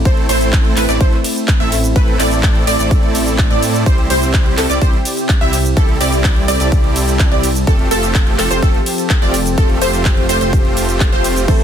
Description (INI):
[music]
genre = EDM, festival progressive house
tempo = 126 BPM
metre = 4/4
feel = straight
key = unclear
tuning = A4 = 441 Hz
[part]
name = lush unison pad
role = sustained chords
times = 0.0-11.6 s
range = C3 to A4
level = -22 LUFS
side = equal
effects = chorus, sidechain pumping
[part]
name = wide detuned saw bass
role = bass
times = 0.0-11.6 s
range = F1 to A2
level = -19 LUFS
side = equal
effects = chorus, sidechain pumping
[part]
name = wide unison pluck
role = arpeggios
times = 0.1-11.6 s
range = A4 to E5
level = -20 LUFS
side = right 1 dB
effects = lush chorus, sidechain pumping, tape echo
[part]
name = supersaw chords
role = riff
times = 0.1-11.6 s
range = G3 to E5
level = -20 LUFS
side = right 2 dB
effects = sidechain pumping, tape echo
[part]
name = big-room dance drum kit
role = drums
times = 0.1-11.6 s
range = crash cymbal, handclaps, hi-hat, ride cymbal, shaker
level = -21 LUFS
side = right 1 dB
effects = none
[part]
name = electronic kick drum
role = drums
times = 0.1-11.6 s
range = none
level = -13 LUFS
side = equal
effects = none
[part]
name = felt-muted upright piano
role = accompaniment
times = 11.5-11.6 s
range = E3 to A4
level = -18 LUFS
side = right 6 dB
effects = sidechain pumping
[sound]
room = little or no reverb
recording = dense, heavily limited modern master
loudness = -11 LUFS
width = side -9 dB against mid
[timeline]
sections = 0.0-11.6 A section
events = none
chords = 0.0 Am; 3.9 C; 7.7 Fadd9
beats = | 0.05 0.53 1.01 1.48 | 1.96 2.44 2.91 3.39 | 3.86 4.34 4.82 5.29 | 5.77 6.24 6.72 7.20 | 7.67 8.15 8.62 9.10 | 9.58 10.05 10.53 11.01 | 11.48